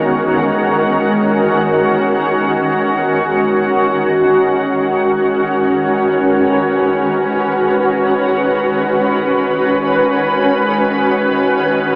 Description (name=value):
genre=ambient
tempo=free time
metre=none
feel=none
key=unclear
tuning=A4 = 443 Hz
part: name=shimmering ambient pad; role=sustained chords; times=0.0-12.0 s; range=E2 to B4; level=-15 LUFS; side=equal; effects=chorus, built-in reverb, shimmer reverb
part: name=felt-muted upright piano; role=arpeggios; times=0.0-6.6 s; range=none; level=barely audible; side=none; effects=none
room=wet huge ambient reverb, RT60 9.6 s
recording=AM radio sound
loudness=-15 LUFS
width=mono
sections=0.0-4.0 A section; 4.0-12.0 B section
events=none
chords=0.0 Emaj9; 4.0 C#9sus4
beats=free time